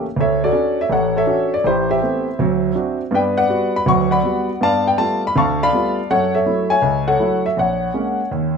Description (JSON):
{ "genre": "jazz", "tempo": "162 BPM", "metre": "4/4", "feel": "swing 66% on 8ths", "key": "F# minor", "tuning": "A4 = 442 Hz", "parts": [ { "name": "warm concert grand piano", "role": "solo", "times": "0.0-8.6 s", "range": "A1 to C#6", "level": "-15 LUFS", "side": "equal", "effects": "none" } ], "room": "light reverb", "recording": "minimal, uncompressed stereo recording", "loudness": "-15 LUFS", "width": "side -6 dB against mid", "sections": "0.0-8.6 A section", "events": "none", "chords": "0.2 Dmaj7; 1.6 Am9; 2.4 D7; 3.1 Gmaj7; 4.6 G9; 6.1 F#m7; 7.6 F#add9/A#", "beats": "| 0.17 0.54 0.91 1.28 | 1.65 2.02 2.38 2.75 | 3.12 3.49 3.86 4.23 | 4.60 4.97 5.34 5.71 | 6.08 6.45 6.82 7.19 | 7.56 7.93 8.30" }